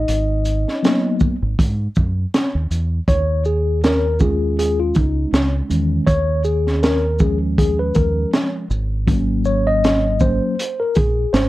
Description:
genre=hip hop, jazz-hop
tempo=80 BPM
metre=4/4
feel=swing 57% on 16ths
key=Eb minor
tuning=A4 = 439 Hz
part: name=mellow tine electric piano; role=accompaniment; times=0.0-11.5 s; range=Eb3 to Eb5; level=-20 LUFS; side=left 1 dB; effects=medium stereo tremolo, plate reverb
part: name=deep dub fingered electric bass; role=bass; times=0.0-11.5 s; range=Ab1 to Ab2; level=-20 LUFS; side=equal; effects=none
part: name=crunchy breakbeat drum kit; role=drums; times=0.1-11.5 s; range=hi-hat, kick drum, shaker, snare drum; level=-18 LUFS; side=equal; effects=none
room=light reverb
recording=dark, warm production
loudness=-16 LUFS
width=side -17 dB against mid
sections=0.0-3.1 A section; 3.1-11.5 B section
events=tine electric piano solo 0.0-3.1, 3.1-11.5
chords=0.0 Abm9; 3.1 Eb9sus4; 8.7 Ab9sus4

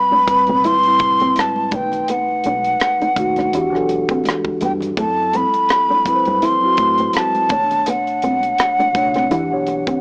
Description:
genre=R&B, neo-soul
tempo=83 BPM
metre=4/4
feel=swing 56% on 16ths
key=unclear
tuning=A4 = 439 Hz
part: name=breathy jazz flute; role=melody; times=0.0-10.0 s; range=F#5 to C6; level=-16 LUFS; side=equal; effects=none
part: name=mellow tine electric piano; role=accompaniment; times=0.0-10.0 s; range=A2 to F#5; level=-21 LUFS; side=equal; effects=medium stereo tremolo
part: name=flamenco guitar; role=second line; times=0.1-10.0 s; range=A3 to E4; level=-23 LUFS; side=equal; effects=none
part: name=congas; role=percussion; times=0.1-9.5 s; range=none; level=-33 LUFS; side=equal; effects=none
part: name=deep dub fingered electric bass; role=bass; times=0.3-9.8 s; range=B1 to A2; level=-29 LUFS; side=equal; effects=none
part: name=tight funk drum kit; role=drums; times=0.3-10.0 s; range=hi-hat, kick drum, rim click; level=-22 LUFS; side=equal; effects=none
room=moderate studio ambience, RT60 0.5 s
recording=small speaker sound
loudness=-14 LUFS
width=side -37 dB against mid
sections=0.0-10.0 A section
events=none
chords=0.0 Am9; 1.7 B7; 3.5 Em9; 5.0 F#m7b5; 7.5 Bm9; 9.3 Em9

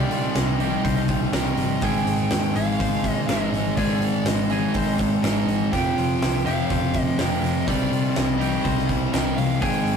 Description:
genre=rock, shoegaze and dream pop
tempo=123 BPM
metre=4/4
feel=straight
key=C minor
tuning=A4 = 439 Hz
part: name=fuzz lead guitar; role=melody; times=0.0-10.0 s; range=D5 to G5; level=-31 LUFS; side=left 1 dB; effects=distortion
part: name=twangy electric guitar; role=arpeggios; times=0.0-10.0 s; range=F4 to C5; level=-34 LUFS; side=left 5 dB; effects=none
part: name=overdriven semi-hollow guitar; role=riff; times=0.0-10.0 s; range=Ab2 to Ab4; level=-26 LUFS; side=right 8 dB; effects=none
part: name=thick fuzz guitar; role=riff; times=0.0-10.0 s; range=F2 to C4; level=-25 LUFS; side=left 5 dB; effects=distortion
part: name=vintage muted picked electric bass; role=bass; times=0.0-10.0 s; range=F1 to C3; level=-28 LUFS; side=left 1 dB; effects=none
part: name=huge arena drum kit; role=drums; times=0.1-10.0 s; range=hi-hat, kick drum, snare drum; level=-27 LUFS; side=equal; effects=none
room=moderate stone room reverb, RT60 1.4 s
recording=rough rehearsal-room recording, warm saturation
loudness=-20 LUFS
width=side -6 dB against mid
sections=0.0-10.0 A section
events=none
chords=0.0 Cm; 1.8 Ab; 5.7 Fsus2; 7.7 Cmadd9

